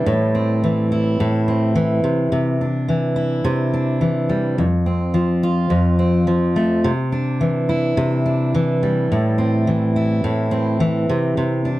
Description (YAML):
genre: pop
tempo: 106 BPM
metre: 4/4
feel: swing 60% on 16ths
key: C major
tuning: A4 = 439 Hz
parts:
  - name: fingerpicked steel-string acoustic guitar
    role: solo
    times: 0.0-11.8 s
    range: F2 to F4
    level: -16 LUFS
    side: equal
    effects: none
room: moderate studio reverb, RT60 0.5 s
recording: dark, warm production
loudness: -16 LUFS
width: side -16 dB against mid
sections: 0.0-11.8 A section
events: none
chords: 0.1 Am; 2.0 Cadd9; 4.6 F; 6.8 Cadd9; 9.1 Am; 11.1 Cadd9